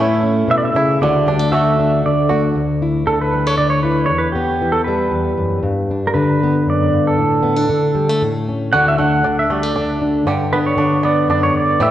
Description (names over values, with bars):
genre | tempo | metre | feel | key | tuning
acoustic folk duo or small band | 117 BPM | 3/4 | straight | D major | A4 = 441 Hz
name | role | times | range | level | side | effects
pedal steel guitar | second line | 0.0-11.9 s | G4 to F#5 | -18 LUFS | right 2 dB | none
fingerpicked plugged-in steel-string acoustic guitar | accompaniment | 0.0-11.9 s | D2 to F#4 | -16 LUFS | left 2 dB | none
bluegrass banjo | arpeggios | 0.0-2.6, 8.7-11.9 s | D3 to G4 | -22 LUFS | right 4 dB | none
room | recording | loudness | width
wet scoring stage reverb, RT60 2.0 s | worn, warbling old tape, cassette tape, warbly pitch drift | -14 LUFS | side -12 dB against mid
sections
0.0-2.6 A section; 2.6-11.9 B section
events
pedal steel guitar solo 0.0-2.6, 2.6-11.9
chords
0.0 A; 1.0 D; 2.6 Dsus2; 4.1 Em; 5.6 G; 7.2 Asus4; 8.2 A; 8.7 D; 10.3 G